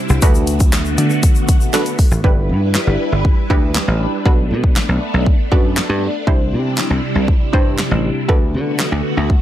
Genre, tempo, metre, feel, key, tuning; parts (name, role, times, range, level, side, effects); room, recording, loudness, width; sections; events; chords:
dance-pop; 119 BPM; 4/4; straight; G major; A4 = 441 Hz
wide unison pluck; accompaniment; 0.0-8.9 s; D4 to C5; -22 LUFS; right 2 dB; sidechain pumping
phased string machine; sustained chords; 0.0-9.4 s; C3 to B4; -22 LUFS; equal; ensemble chorus, phaser, sidechain pumping
dry thumbed slap bass; bass; 0.1-9.3 s; G1 to D3; -18 LUFS; equal; sidechain pumping
tube shaker; percussion; 0.1-2.2 s; -30 LUFS; left 8 dB
pop drum kit; drums; 0.2-9.4 s; handclaps, hi-hat, kick drum, snare drum; -15 LUFS; equal
little or no reverb; -13 LUFS; side -12 dB against mid
0.0-2.2 A section; 2.2-9.4 B section
0.2 D6; 2.2 G6; 4.3 Bm7; 6.3 Cadd9; 8.3 D6